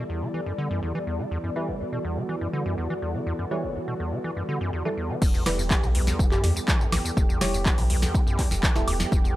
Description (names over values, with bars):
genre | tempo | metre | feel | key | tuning
acid house | 123 BPM | 4/4 | straight | E minor | A4 = 440 Hz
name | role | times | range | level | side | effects
warm analog pad | sustained chords | 0.0-9.4 s | E3 to G4 | -34 LUFS | right 2 dB | chorus, sidechain pumping
acid bass, square | riff | 0.0-9.3 s | E1 to E3 | -30 LUFS | equal | overdrive, cassette tape, sidechain pumping, tape echo
ethereal airy pad | texture | 0.0-9.4 s | E4 to D6 | -36 LUFS | equal | ensemble chorus, built-in reverb, sidechain pumping
deep mellow chord stab | stabs | 1.6-8.9 s | G3 to C#5 | -33 LUFS | right 1 dB | chorus, tape echo
warm sub bass | bass | 5.2-9.3 s | D1 to E2 | -27 LUFS | equal | tube saturation, sidechain pumping
booming analog drum machine | drums | 5.2-9.3 s | crash cymbal, handclaps, hi-hat, snare drum, tambourine, woodblock | -28 LUFS | equal | none
electronic kick drum | drums | 5.2-9.2 s | none | -23 LUFS | equal | overdrive
soft struck synth lead | melody | 6.3-7.8 s | G4 | -35 LUFS | left 1 dB | chorus, tremolo, tape echo
room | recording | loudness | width
light reverb, digital ambience | dry, gritty hardware recording | -23 LUFS | side -15 dB against mid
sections
0.0-5.2 A section; 5.2-9.4 B section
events
filter sweep on analog synth pad 0.0-5.2; drop 5.2-9.4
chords
0.0 Em